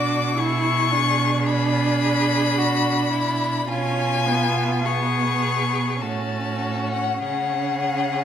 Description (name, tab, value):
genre	classical, slow romantic movement for string quartet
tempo	48-56 BPM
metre	3/4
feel	rubato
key	unclear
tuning	A4 = 440 Hz
part	rich violin	melody	0.0-8.2 s	F#5 to D6	-24 LUFS	left 6 dB	none
part	rich violin	second line	0.0-8.2 s	E4 to G#4	-28 LUFS	left 2 dB	none
part	rich viola	accompaniment	0.0-8.2 s	B3 to E4	-25 LUFS	right 2 dB	none
part	rich cello	bass	0.0-8.2 s	A2 to C#3	-25 LUFS	right 3 dB	none
room	wet recital hall reverb, RT60 1.3 s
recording	none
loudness	-19 LUFS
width	side -9 dB against mid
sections	0.0-8.2 A section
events	none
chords	0.4 G#dim/B; 3.7 C#7/B; 6.0 F#m/A; 7.2 C#5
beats	| 0.37 1.46 2.58 | 3.68 4.85 6.01 | 7.23